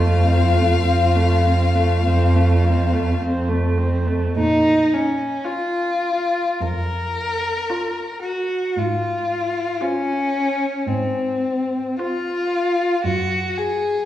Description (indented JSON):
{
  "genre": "classical, slow romantic movement for string quartet",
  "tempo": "50-59 BPM",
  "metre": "4/4",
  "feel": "rubato",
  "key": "Bb minor",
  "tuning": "A4 = 440 Hz",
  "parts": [
    { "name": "clear violin", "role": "melody", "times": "0.0-12.8 s", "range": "C5 to F5", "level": "-25 LUFS", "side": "left 9 dB", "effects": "none" },
    { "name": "warm violin", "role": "second line", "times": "0.0-14.1 s", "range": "C4 to Bb4", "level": "-21 LUFS", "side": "left 2 dB", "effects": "none" },
    { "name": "rich viola", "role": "accompaniment", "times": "0.0-12.8 s", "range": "A3 to F4", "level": "-25 LUFS", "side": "right 1 dB", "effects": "none" },
    { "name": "warm cello", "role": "bass", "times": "0.0-13.9 s", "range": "F2 to Bb2", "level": "-20 LUFS", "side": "right 1 dB", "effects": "none" }
  ],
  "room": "wet recital hall reverb, RT60 1.7 s",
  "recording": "heard from further back in the room, small room ambience",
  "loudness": "-18 LUFS",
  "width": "side -12 dB against mid",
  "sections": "0.0-4.4 A section; 4.4-14.1 B section",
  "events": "none",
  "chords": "0.0 F; 4.4 Bbm; 8.8 Fm/Ab; 13.0 N.C."
}